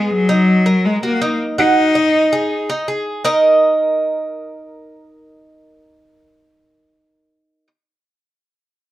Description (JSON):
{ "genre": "latin", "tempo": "162 BPM", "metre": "4/4", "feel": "straight", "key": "Eb minor", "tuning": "A4 = 442 Hz", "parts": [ { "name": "clear cello", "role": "melody", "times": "0.0-2.8 s", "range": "Gb3 to Eb4", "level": "-15 LUFS", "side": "left 1 dB", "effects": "plate reverb" }, { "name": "Cuban tres", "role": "arpeggios", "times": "0.0-7.7 s", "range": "Eb4 to Eb5", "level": "-16 LUFS", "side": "right 2 dB", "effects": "none" } ], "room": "wet studio reverb, RT60 0.7 s", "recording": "dark, warm production", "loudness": "-13 LUFS", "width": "side -14 dB against mid", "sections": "0.0-3.3 A section; 3.3-6.2 B section", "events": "none", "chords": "0.3 Ebm; 1.8 Ab5; 3.3 Eb5" }